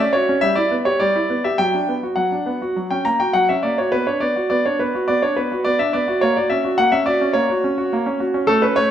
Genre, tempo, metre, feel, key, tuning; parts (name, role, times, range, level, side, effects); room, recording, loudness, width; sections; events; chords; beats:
classical-period piano sonatina; 105 BPM; 4/4; straight; B minor; A4 = 440 Hz
clear concert grand piano; solo; 0.0-8.9 s; F#3 to A#5; -16 LUFS; equal
wet recital hall reverb, RT60 1.2 s; -16 LUFS; side -10 dB against mid
0.0-8.9 A section
0.4 Em/G; 1.6 Bm/F#; 2.8 F#; 3.9 Bm; 6.2 F#/A#
0.43 1.01 | 1.59 2.18 2.77 3.35 | 3.94 4.51 5.08 5.66 | 6.22 6.79 7.36 7.93 | 8.50